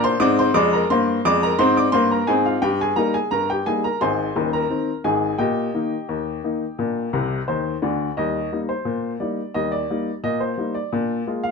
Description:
ragtime piano; 87 BPM; 2/4; straight; Eb major; A4 = 441 Hz
clear upright piano; solo; 0.0-11.5 s; Eb1 to D6; -19 LUFS; left 1 dB
moderate club reverb, RT60 0.5 s; nothing above 10.7 kHz; -19 LUFS; side -4 dB against mid
0.0-8.2 A section; 8.2-11.5 B section
upright piano fill 7.1-8.2
0.0 Bb7/F; 2.6 Eb/G; 4.0 Ab; 5.4 Eb/Bb; 6.8 Bb; 8.2 Eb; 10.9 Bb7

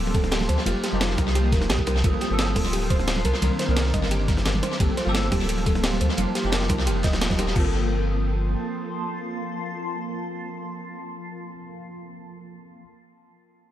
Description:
liquid drum and bass; 174 BPM; 4/4; straight; G minor; A4 = 440 Hz
bell-like tine electric piano; accompaniment; 0.0-12.8 s; Eb3 to Bb4; -30 LUFS; equal; ensemble chorus, analog delay
shimmering ambient pad; sustained chords; 0.0-11.1 s; Bb3 to Eb6; -32 LUFS; right 1 dB; chorus, built-in reverb, phaser, sidechain pumping
warm sub bass; bass; 0.0-8.6 s; D1 to D2; -25 LUFS; equal
thumb-piano-like synth pluck; arpeggios; 0.1-7.7 s; F4 to Eb5; -32 LUFS; right 2 dB; chorus, tape echo
breakbeat sampler-style drum kit; drums; 0.1-7.6 s; crash cymbal, hi-hat, snare drum; -30 LUFS; equal; tape echo
crunchy breakbeat drum kit; drums; 0.1-7.6 s; hi-hat, ride cymbal, snare drum; -32 LUFS; equal; high-pass filter on cymbals, high-pass filter on hats, high-pass filter on snare, high-pass filter on room, tape echo
electronic kick drum; drums; 0.1-7.6 s; -25 LUFS; equal
congas; percussion; 0.1-7.4 s; -31 LUFS; right 1 dB; tape echo
light reverb, small room reverb; echo-heavy mix; -21 LUFS; side -12 dB against mid
0.0-7.6 A section; 7.6-10.3 B section
drop 0.0-7.6; band accent 7.2
0.0 Gm11; 0.7 F9sus4; 2.0 Gm11; 3.2 Cm9; 4.8 Gm11; 6.2 F9sus4; 7.6 Gm11

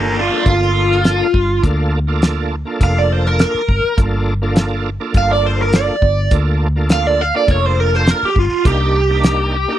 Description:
straight-eighth soul blues; 103 BPM; 4/4; straight; G minor; A4 = 439 Hz
biting overdriven guitar; melody; 0.0-9.8 s; Bb3 to F5; -16 LUFS; right 1 dB; phaser
bright tonewheel organ; accompaniment; 0.0-9.8 s; Bb3 to A4; -22 LUFS; right 3 dB; slow rotary speaker, overdrive, chorus vibrato
vintage muted fingered electric bass; bass; 0.0-9.6 s; F1 to D2; -17 LUFS; equal
cloth-damped thuddy drum kit; drums; 0.5-9.4 s; hi-hat, kick drum, snare drum; -14 LUFS; equal
little or no reverb; dry, close 1970s-style studio recording; -13 LUFS; side -12 dB against mid
0.0-9.8 A section
overdriven electric guitar solo 0.0-9.8
0.0 Gm7; 8.7 Cm7

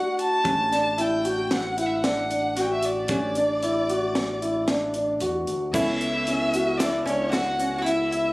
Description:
progressive instrumental, band music in an uneven meter; 113 BPM; 5/4; straight; B minor; A4 = 441 Hz
warm violin; melody; 0.0-8.3 s; C#5 to A5; -27 LUFS; equal; plate reverb, tape echo
bell-like tine electric piano; accompaniment; 0.0-8.3 s; A3 to A4; -33 LUFS; equal; plate reverb
dark concert grand piano; arpeggios; 0.0-8.3 s; C#4 to F#4; -25 LUFS; equal; plate reverb, tape echo
tight funk drum kit; drums; 0.2-8.2 s; crash cymbal, hi-hat, kick drum, snare drum; -29 LUFS; equal
round analog bass; bass; 0.5-8.3 s; A1 to E2; -36 LUFS; equal
lap resonator guitar; second line; 5.7-8.3 s; C#4 to F#4; -30 LUFS; equal; plate reverb, tape echo
tube shaker; percussion; 5.8-8.0 s; -42 LUFS; left 1 dB
wet studio ambience, RT60 0.5 s; recorded on a phone in the room, studio reverb; -22 LUFS; side -21 dB against mid
0.0-5.7 A section; 5.7-8.3 B section
0.4 A7sus4; 5.7 Bm11/C#

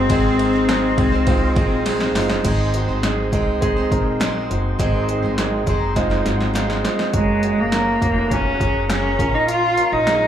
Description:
piano-driven pop; 102 BPM; 4/4; straight; A4 = 439 Hz
clear cello; melody; 0.0-1.8, 7.1-10.3 s; Ab3 to F4; -18 LUFS; equal; plate reverb, slapback echo
warm baby grand piano; accompaniment; 0.0-10.3 s; Ab2 to C6; -22 LUFS; right 1 dB; plate reverb, slapback echo
tonewheel organ; sustained chords; 0.0-10.3 s; Ab4 to Db6; -32 LUFS; left 1 dB; chorus vibrato, slow rotary speaker, plate reverb
picked steel-string acoustic guitar; riff; 0.0-7.6 s; Ab2 to C5; -28 LUFS; right 4 dB; slapback echo
upright bass; bass; 0.0-10.3 s; F1 to C2; -24 LUFS; equal
deep house drum kit; drums; 0.1-10.2 s; crash cymbal, hi-hat, kick drum, ride cymbal, snare drum; -22 LUFS; equal; overdrive
moderate club reverb, RT60 0.6 s; live gig heard through the venue's PA, club ambience; -16 LUFS; side -10 dB against mid
0.0-2.4 A section; 2.4-7.1 B section; 7.1-10.3 C section
drum fill 1.9-2.4, 6.0-7.1; grand piano fill 5.4-7.1
0.0 Ab; 7.1 Gbadd9; 9.2 Bbm

